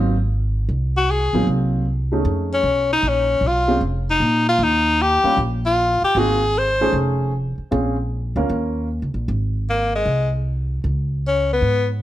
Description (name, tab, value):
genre	jazz, small-group swing and bop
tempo	154 BPM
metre	4/4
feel	swing 66% on 8ths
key	Ab mixolydian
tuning	A4 = 440 Hz
part	warm upright piano	accompaniment	0.0-8.9 s	Gb3 to Bb4	-22 LUFS	right 2 dB	none
part	upright bass	bass	0.0-12.0 s	F1 to Bb2	-21 LUFS	equal	none
part	bright tenor saxophone	melody	1.0-7.0, 9.7-11.9 s	Ab3 to C5	-18 LUFS	left 2 dB	plate reverb
room	moderate studio reverb, RT60 0.8 s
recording	none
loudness	-17 LUFS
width	side -13 dB against mid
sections	0.0-9.3 A section; 9.3-12.0 A section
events	none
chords	0.0 Ab7; 1.5 Cm7b5; 2.3 F7alt; 3.0 Bbm; 4.6 Eb; 6.2 Ab7; 6.9 F7alt; 7.7 Bbm7; 8.5 Eb5; 9.3 Ab; 10.8 Db5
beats	0.30 0.69 1.08 | 1.47 1.86 2.25 2.65 | 3.04 3.43 3.82 4.21 | 4.60 4.99 5.38 5.77 | 6.16 6.55 6.94 7.33 | 7.72 8.11 8.50 8.89 | 9.29 9.68 10.07 10.46 | 10.85 11.24 11.63